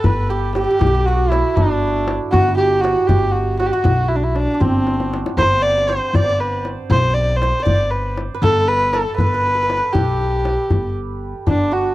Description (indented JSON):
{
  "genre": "Persian modal ensemble",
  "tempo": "79 BPM (dotted quarters)",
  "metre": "6/8",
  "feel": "straight",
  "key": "G dastgah mahur",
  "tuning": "A4 = 439 Hz",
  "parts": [
    { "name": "rich kamancheh", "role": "melody", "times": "0.0-11.9 s", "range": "C4 to D5", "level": "-18 LUFS", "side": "equal", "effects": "none" },
    { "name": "santur", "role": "second line", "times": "0.0-11.9 s", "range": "C4 to D5", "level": "-24 LUFS", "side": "right 5 dB", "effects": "slapback echo" },
    { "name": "upright bass", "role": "bass", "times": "0.0-11.9 s", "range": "G1 to B1", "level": "-21 LUFS", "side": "equal", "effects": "none" },
    { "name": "tombak", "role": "percussion", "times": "0.0-11.6 s", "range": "none", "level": "-21 LUFS", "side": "left 2 dB", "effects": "none" }
  ],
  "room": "little or no reverb",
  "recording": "dry, close 1970s-style studio recording",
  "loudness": "-15 LUFS",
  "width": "side -16 dB against mid",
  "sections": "0.0-11.5 A section",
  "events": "drum fill 4.9-5.4",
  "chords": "none",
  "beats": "0.05 | 0.81 1.57 | 2.33 3.09 | 3.86 4.62 | 5.38 6.14 | 6.90 7.66 | 8.43 9.19 | 9.95 10.71 | 11.47"
}